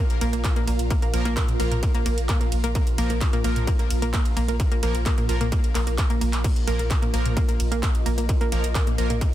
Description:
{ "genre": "driving peak-time techno", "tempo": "130 BPM", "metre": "4/4", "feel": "straight", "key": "unclear", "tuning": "A4 = 440 Hz", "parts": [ { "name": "deep dark ambient pad", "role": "drone", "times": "0.1-9.3 s", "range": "Bb2", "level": "-36 LUFS", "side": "right 3 dB", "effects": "none" }, { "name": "ethereal airy pad", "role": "texture", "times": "0.0-9.3 s", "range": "F4 to F5", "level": "-34 LUFS", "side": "right 1 dB", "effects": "ensemble chorus, built-in reverb, phaser, sidechain pumping" }, { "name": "techno drum kit", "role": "drums", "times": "0.1-9.3 s", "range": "crash cymbal, handclaps, hi-hat, ride cymbal, toms", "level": "-31 LUFS", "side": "equal", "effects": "overdrive, sidechain pumping on hats, studio reverb, sidechain pumping on toms, sidechain pumping on cymbals" }, { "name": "analog pluck", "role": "riff", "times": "0.2-9.2 s", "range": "Bb3", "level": "-30 LUFS", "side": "equal", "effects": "chorus, sidechain pumping, ping-pong delay" }, { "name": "warm sub bass", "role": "bass", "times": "0.2-9.2 s", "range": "Bb1", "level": "-24 LUFS", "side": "equal", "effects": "overdrive, sidechain pumping, low-pass filter" }, { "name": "electronic kick drum", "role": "drums", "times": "0.4-9.3 s", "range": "none", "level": "-22 LUFS", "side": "equal", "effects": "distortion, overdrive, studio reverb" }, { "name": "supersaw stab", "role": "stabs", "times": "1.1-9.1 s", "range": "F3 to Bb4", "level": "-32 LUFS", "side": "right 1 dB", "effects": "sidechain pumping, ping-pong delay" } ], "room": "light reverb", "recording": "dense, heavily limited modern master", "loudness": "-20 LUFS", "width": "side -13 dB against mid", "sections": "0.0-9.3 A section", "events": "drum fill 6.0-6.4", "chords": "0.0 Bb5", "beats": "0.44 | 0.91 1.37 1.83 2.29 | 2.75 3.21 3.67 4.14 | 4.60 5.06 5.52 5.98 | 6.44 6.91 7.37 7.83 | 8.29 8.75 9.21" }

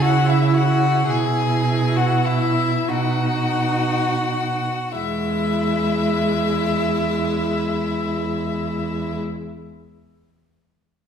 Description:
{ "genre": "classical, slow romantic movement for string quartet", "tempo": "27-40 BPM (dotted quarters)", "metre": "6/8", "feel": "rubato", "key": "E major", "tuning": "A4 = 442 Hz", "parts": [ { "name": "rich violin", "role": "melody", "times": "0.0-9.2 s", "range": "E5 to G#5", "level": "-25 LUFS", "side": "left 6 dB", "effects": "none" }, { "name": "rich violin", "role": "second line", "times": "0.0-9.2 s", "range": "E4 to G#4", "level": "-25 LUFS", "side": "left 2 dB", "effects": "none" }, { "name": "rich viola", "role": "accompaniment", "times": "0.0-9.2 s", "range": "G#3 to E4", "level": "-24 LUFS", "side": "equal", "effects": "none" }, { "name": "rich cello", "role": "bass", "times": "0.0-9.2 s", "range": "E2 to C#3", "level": "-23 LUFS", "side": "right 4 dB", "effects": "none" } ], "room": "wet recital hall reverb, RT60 1.6 s", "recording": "heard from further back in the room", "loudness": "-18 LUFS", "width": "side -7 dB against mid", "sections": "0.0-5.0 A section; 5.0-9.2 B section", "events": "slowing down 0.0-5.0", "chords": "0.0 C#madd11; 1.1 E/B; 2.9 B; 5.0 E", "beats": "| 1.09 2.89 | 4.96 7.03" }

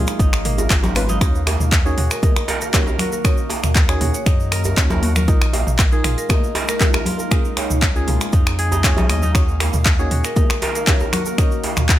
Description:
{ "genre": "afro house", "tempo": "118 BPM", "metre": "4/4", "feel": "straight", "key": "Eb minor", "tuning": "A4 = 440 Hz", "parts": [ { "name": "ethereal airy pad", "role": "sustained chords", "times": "0.0-12.0 s", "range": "Db3 to F5", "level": "-30 LUFS", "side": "equal", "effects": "ensemble chorus, built-in reverb, sidechain pumping" }, { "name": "kora", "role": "arpeggios", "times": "0.0-12.0 s", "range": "Bb3 to Eb5", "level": "-27 LUFS", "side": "right 1 dB", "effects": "sidechain pumping, dub echo" }, { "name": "warm sub bass", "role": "bass", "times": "0.0-12.0 s", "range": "Ab1 to Gb2", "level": "-20 LUFS", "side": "equal", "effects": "sidechain pumping" }, { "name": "deep house drum kit", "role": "drums", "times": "0.1-12.0 s", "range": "finger snaps, handclaps, hi-hat, toms", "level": "-22 LUFS", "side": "equal", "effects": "overdrive, studio reverb" }, { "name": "tube shaker", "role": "percussion", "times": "0.1-12.0 s", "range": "none", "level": "-32 LUFS", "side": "right 4 dB", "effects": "none" }, { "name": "electronic kick drum", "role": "drums", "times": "0.2-12.0 s", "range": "none", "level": "-17 LUFS", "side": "equal", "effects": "overdrive, studio reverb" }, { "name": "djembe", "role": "percussion", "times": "0.2-11.7 s", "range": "none", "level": "-27 LUFS", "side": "right 2 dB", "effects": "none" }, { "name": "deep mellow chord stab", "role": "stabs", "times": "0.6-11.5 s", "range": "Ab3 to Db5", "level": "-29 LUFS", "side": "right 2 dB", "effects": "chorus, sidechain pumping, dub echo" }, { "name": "congas", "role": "percussion", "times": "0.8-11.5 s", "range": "none", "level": "-27 LUFS", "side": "left 2 dB", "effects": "none" }, { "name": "marimba with medium hard mallets", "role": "melody", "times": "2.1-11.3 s", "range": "Bb4 to Db5", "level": "-29 LUFS", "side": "left 2 dB", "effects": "dub echo" } ], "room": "studio reverb", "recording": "none", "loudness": "-15 LUFS", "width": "side -13 dB against mid", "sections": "0.0-12.0 A section", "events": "none", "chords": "0.0 Db; 1.2 Ebm7; 5.3 Bb7sus4; 7.3 Db; 9.3 Ebm7", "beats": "0.20 0.70 | 1.21 1.72 2.23 2.74 | 3.25 3.76 4.26 4.77 | 5.28 5.79 6.30 6.81 | 7.32 7.82 8.33 8.84 | 9.35 9.86 10.37 10.87 | 11.38 11.89" }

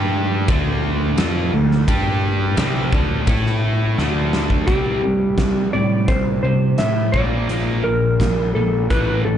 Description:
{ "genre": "classic rock", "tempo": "86 BPM", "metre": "4/4", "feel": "straight", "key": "unclear", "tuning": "A4 = 439 Hz", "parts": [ { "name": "distorted electric guitar", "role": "riff", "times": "0.0-9.4 s", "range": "A2 to A4", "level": "-21 LUFS", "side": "right 1 dB", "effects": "distortion" }, { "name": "fuzz picked electric bass", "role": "bass", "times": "0.0-9.4 s", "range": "A1 to C3", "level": "-21 LUFS", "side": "equal", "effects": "overdrive" }, { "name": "huge arena drum kit", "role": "drums", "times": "0.5-9.1 s", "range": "hi-hat, kick drum, ride cymbal, snare drum", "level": "-22 LUFS", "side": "equal", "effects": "none" }, { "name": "clean lap steel guitar", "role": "melody", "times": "4.7-9.4 s", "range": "G4 to E5", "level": "-22 LUFS", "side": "equal", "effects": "slapback echo, tape echo" } ], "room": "light reverb, studio reverb", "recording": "live gig heard through the venue's PA, club reverb, nothing above 10.7 kHz", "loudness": "-16 LUFS", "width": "side -9 dB against mid", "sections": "0.0-4.7 A section; 4.7-9.4 B section", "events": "drum fill 4.0-4.7", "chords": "0.5 D5; 1.9 G5; 2.6 D5; 3.3 A5; 4.0 D5; 4.7 C5; 7.1 Bb", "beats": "0.48 1.18 | 1.88 2.58 3.27 3.98 | 4.67 5.38 6.08 6.78 | 7.49 8.19 8.90" }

